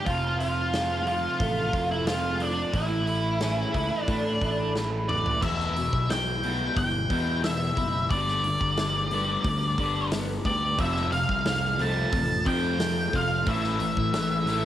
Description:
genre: quiet-loud alternative rock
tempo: 90 BPM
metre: 4/4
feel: straight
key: unclear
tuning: A4 = 440 Hz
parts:
  - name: octave-fuzz lead guitar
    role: melody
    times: 0.0-14.7 s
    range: D4 to A5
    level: -28 LUFS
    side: equal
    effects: distortion, cassette tape
  - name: electric guitar through a small old amp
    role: arpeggios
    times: 0.0-14.7 s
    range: E2 to G4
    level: -34 LUFS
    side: right 1 dB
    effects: ensemble chorus
  - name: thick fuzz guitar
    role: riff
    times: 0.0-5.4, 10.8-14.7 s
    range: F2 to A3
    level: -33 LUFS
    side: right 6 dB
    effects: distortion
  - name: picked electric bass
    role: bass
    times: 0.1-14.7 s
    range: E1 to A2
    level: -30 LUFS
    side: equal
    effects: none
  - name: big rock drum kit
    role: drums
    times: 0.1-14.6 s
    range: crash cymbal, hi-hat, kick drum, snare drum, toms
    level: -32 LUFS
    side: equal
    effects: cassette tape
  - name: thick fuzz guitar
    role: riff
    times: 5.4-14.7 s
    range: E2 to A3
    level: -32 LUFS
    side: left 6 dB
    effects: distortion
room: small room ambience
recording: home recording on cassette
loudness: -24 LUFS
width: side -12 dB against mid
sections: 0.0-5.4 A section; 5.4-14.7 B section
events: drum fill 4.8-5.4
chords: 0.1 F; 2.7 A; 5.4 Em; 8.1 G; 10.8 F; 13.5 A5

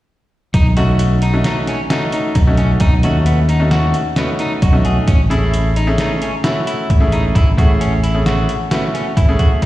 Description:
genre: progressive instrumental, band music in an uneven meter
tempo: 132 BPM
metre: 5/4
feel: straight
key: B mixolydian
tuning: A4 = 440 Hz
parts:
  - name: electric guitar at the edge of break-up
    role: arpeggios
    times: 0.5-9.7 s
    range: B3 to G#4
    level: -23 LUFS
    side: equal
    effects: slapback echo
  - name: fingered electric bass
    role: bass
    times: 0.5-9.7 s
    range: A1 to D#2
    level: -14 LUFS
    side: equal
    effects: none
  - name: trip hop sampler-style drum kit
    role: drums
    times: 0.5-9.7 s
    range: crash cymbal, hi-hat, kick drum, snare drum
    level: -16 LUFS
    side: equal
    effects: none
  - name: bright grand piano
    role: accompaniment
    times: 0.8-9.6 s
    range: A3 to D#5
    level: -20 LUFS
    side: left 1 dB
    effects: slapback echo
room: little or no reverb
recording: live gig heard through the venue's PA, recital hall reverb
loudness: -12 LUFS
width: side -16 dB against mid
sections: 0.5-9.6 A section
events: grand piano fill 4.4-5.1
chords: 0.5 B7; 5.1 F#m7/A

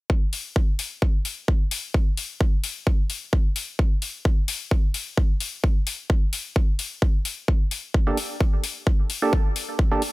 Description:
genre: bass house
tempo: 130 BPM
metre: 4/4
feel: swing 55% on 16ths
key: G minor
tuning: A4 = 440 Hz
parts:
  - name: electronic kick drum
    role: drums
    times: 0.1-9.9 s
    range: none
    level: -20 LUFS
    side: equal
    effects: none
  - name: electronic hi-hat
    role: drums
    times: 0.3-10.1 s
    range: none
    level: -29 LUFS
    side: left 5 dB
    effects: none
  - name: percussive organ stab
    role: stabs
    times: 8.1-10.0 s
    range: Bb3 to A4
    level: -26 LUFS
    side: right 2 dB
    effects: chorus, sidechain pumping, tape echo
room: digital ambience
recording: none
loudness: -21 LUFS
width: side -21 dB against mid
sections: 0.1-10.1 A section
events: none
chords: 0.1 Gmadd9

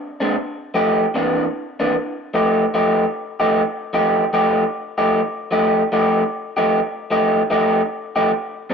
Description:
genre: blues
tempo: 151 BPM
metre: 4/4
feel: swing 65% on 8ths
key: F mixolydian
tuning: A4 = 440 Hz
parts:
  - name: electric guitar through a small old amp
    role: solo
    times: 0.2-8.7 s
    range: Bb2 to G4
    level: -17 LUFS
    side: equal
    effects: spring reverb
room: wet booth ambience, RT60 0.2 s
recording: rough rehearsal-room recording, tube saturation, nothing above 10.6 kHz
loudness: -17 LUFS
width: side -6 dB against mid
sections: 0.0-1.9 A section; 1.9-8.7 B section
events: none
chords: 0.4 F9; 1.2 C9; 1.9 F9

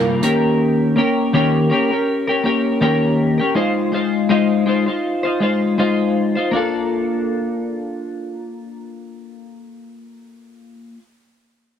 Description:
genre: indie pop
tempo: 81 BPM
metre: 4/4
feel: swing 55% on 16ths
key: unclear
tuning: A4 = 440 Hz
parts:
  - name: twelve-string electric guitar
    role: accompaniment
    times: 0.0-11.0 s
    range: C3 to C5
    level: -16 LUFS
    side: left 1 dB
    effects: lush chorus, vibrato effect
room: light reverb, studio reverb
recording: none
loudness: -16 LUFS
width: side -8 dB against mid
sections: 0.0-6.5 A section; 6.5-9.5 B section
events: none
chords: 0.2 Eb7; 3.6 Ab6; 6.5 Bbmaj7

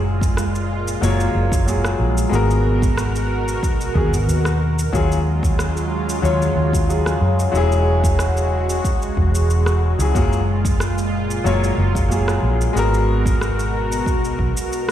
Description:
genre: sunset chillout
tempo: 92 BPM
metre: 4/4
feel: straight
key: unclear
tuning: A4 = 439 Hz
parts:
  - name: lush unison pad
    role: sustained chords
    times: 0.0-14.9 s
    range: Bb2 to Bb4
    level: -24 LUFS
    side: right 1 dB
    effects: chorus, phaser
  - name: vintage muted fingered electric bass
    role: bass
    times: 0.0-14.5 s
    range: E1 to Gb2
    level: -19 LUFS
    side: equal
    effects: none
  - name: electronic kick drum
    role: drums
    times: 0.2-14.5 s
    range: none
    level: -21 LUFS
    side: equal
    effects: small room ambience
  - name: electronic shaker and rim click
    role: drums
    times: 0.2-14.9 s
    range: none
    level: -30 LUFS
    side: equal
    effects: small room ambience
  - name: warm concert grand piano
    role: accompaniment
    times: 1.0-14.9 s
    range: Gb3 to Db5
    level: -23 LUFS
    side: moving between left 5 dB and right 2 dB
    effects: auto-pan, digital delay
room: light reverb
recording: played on a big sound system in a bare room, stone room reverb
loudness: -16 LUFS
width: side -11 dB against mid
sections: 0.0-14.9 A section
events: none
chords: 0.0 Gbmaj9; 2.3 Abm9; 4.9 Ebm11; 7.5 E69; 10.2 Gbmaj9; 12.8 Abm9

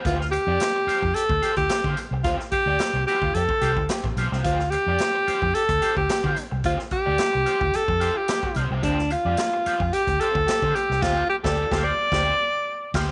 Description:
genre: funk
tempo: 109 BPM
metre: 4/4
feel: straight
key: D minor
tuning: A4 = 440 Hz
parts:
  - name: crunchy overdriven guitar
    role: accompaniment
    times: 0.0-13.1 s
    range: F4 to D5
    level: -34 LUFS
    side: equal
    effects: wah, spring reverb
  - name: breathy alto saxophone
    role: melody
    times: 0.1-12.9 s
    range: D4 to D5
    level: -25 LUFS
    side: equal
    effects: none
  - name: vintage muted fingered electric bass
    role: bass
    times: 0.1-13.1 s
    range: A1 to D3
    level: -29 LUFS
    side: equal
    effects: none
  - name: swinging big-band drum kit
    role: drums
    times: 0.1-13.1 s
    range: crash cymbal, hi-hat, kick drum, snare drum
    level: -32 LUFS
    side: equal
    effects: none
  - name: tambourine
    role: percussion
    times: 0.1-10.9 s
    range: none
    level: -46 LUFS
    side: equal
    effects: none
  - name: brilliant trombone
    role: second line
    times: 1.1-13.1 s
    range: G4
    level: -35 LUFS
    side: equal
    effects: none
room: light reverb, studio ambience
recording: nothing above 10.6 kHz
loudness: -23 LUFS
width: mono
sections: 0.0-13.1 A section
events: band accent 11.0-13.1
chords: 0.0 Dm7

